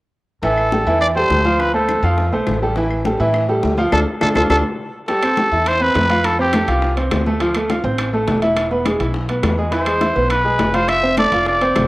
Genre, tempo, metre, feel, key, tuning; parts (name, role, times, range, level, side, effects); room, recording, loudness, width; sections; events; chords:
latin, salsa; 207 BPM; 4/4; straight; A minor; A4 = 438 Hz
growling trumpet; melody; 0.4-6.9, 9.7-11.9 s; G4 to E5; -18 LUFS; equal
bright upright piano; accompaniment; 0.4-11.9 s; E3 to G5; -19 LUFS; right 1 dB; cassette tape
upright bass; bass; 0.4-11.9 s; E1 to A2; -22 LUFS; equal
bongos; percussion; 0.4-11.9 s; -27 LUFS; left 3 dB
congas; percussion; 0.4-11.9 s; -26 LUFS; left 1 dB
claves; percussion; 0.6-11.9 s; -34 LUFS; left 3 dB
timbales; percussion; 5.1-11.9 s; -28 LUFS; right 2 dB
moderate spring reverb, RT60 1.7 s, small room ambience; home recording on cassette; -14 LUFS; side -19 dB against mid
0.4-5.1 A section; 5.1-11.9 B section
drum fill 3.9-5.1; band accent 3.9-5.1
0.4 Am7; 1.6 Dm7; 2.8 A5; 3.9 Dm; 5.1 Am9; 6.2 Fadd9; 7.4 Dm9; 8.6 E; 10.9 Dm7/F